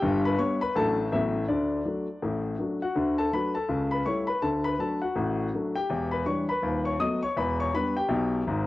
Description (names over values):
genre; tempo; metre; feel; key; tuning
jazz, stride piano; 163 BPM; 4/4; swing 60% on 8ths; D major; A4 = 440 Hz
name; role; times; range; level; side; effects
warm grand piano; solo; 0.0-8.7 s; D#1 to D#6; -25 LUFS; left 2 dB; cassette tape
room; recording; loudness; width
light reverb; home recording on cassette; -25 LUFS; side -17 dB against mid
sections
0.0-3.0 A section; 3.0-8.7 A section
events
none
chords
0.0 G; 0.8 D/A; 1.1 A69; 1.5 D; 3.7 A7/C#; 4.4 D; 5.9 Em7; 6.6 B7/D#; 7.4 Em7